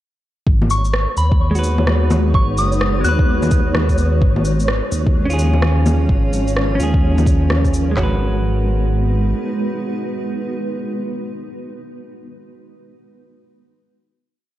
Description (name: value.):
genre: future garage.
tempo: 128 BPM.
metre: 4/4.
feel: swing 62% on 16ths.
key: G# dorian.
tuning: A4 = 440 Hz.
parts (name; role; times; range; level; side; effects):
granular cloud pad; sustained chords; 1.2-11.2 s; E#3 to C#5; -25 LUFS; equal; built-in reverb, sidechain pumping.
dark detuned saw bass; bass; 0.5-9.3 s; F#1 to D#2; -17 LUFS; equal; sidechain pumping.
organic electronic drum kit; drums; 0.5-8.1 s; handclaps, kick drum, snare drum, toms; -17 LUFS; equal; none.
flickering grainy texture; texture; 0.5-8.0 s; C#5; -30 LUFS; right 1 dB; built-in reverb.
electronic bongos, shaker and rim click; drums; 0.6-7.9 s; none; -22 LUFS; left 1 dB; none.
soft synth bell; melody; 0.7-3.7 s; B5 to F#6; -24 LUFS; left 1 dB; chorus, phaser, tape echo.
clean electric guitar; accompaniment; 1.5-11.3 s; G#3 to B4; -24 LUFS; right 2 dB; vintage 12-bit sampler grit, sidechain pumping, analog delay.
room: light reverb.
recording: cassette tape.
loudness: -15 LUFS.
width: side -14 dB against mid.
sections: 0.5-8.0 groove; 8.0-11.7 final chord.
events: none.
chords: 0.5 G#m7; 4.2 C#/G#; 8.0 G#m7.